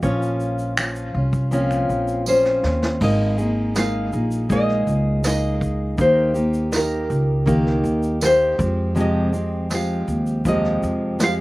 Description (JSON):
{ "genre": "acoustic pop", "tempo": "81 BPM", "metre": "4/4", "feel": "straight", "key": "Ab major", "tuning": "A4 = 440 Hz", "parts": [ { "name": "nylon-string guitar", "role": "melody", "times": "0.0-11.3 s", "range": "Bb4 to F5", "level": "-22 LUFS", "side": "equal", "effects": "none" }, { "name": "fingerpicked steel-string acoustic guitar", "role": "accompaniment", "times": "0.0-11.4 s", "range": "F2 to Ab4", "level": "-22 LUFS", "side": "equal", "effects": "slapback echo" }, { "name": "upright bass", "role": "bass", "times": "0.0-11.4 s", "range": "Ab1 to F2", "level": "-23 LUFS", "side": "equal", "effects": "none" }, { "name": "vintage brush drum kit", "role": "drums", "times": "0.0-11.4 s", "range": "crash cymbal, finger snaps, kick drum, shaker, snare drum", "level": "-26 LUFS", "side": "equal", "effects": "none" }, { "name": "tambourine", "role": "percussion", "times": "0.8-11.4 s", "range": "none", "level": "-31 LUFS", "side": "right 4 dB", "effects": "none" } ], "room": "little or no reverb", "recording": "recorded outdoors, with no room sound", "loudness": "-18 LUFS", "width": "side -19 dB against mid", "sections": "0.0-3.0 A section; 3.0-11.4 B section", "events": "drum fill 2.3-3.0", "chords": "0.0 Bbmadd9; 3.0 Absus2; 6.0 Eb; 8.6 Fmadd9" }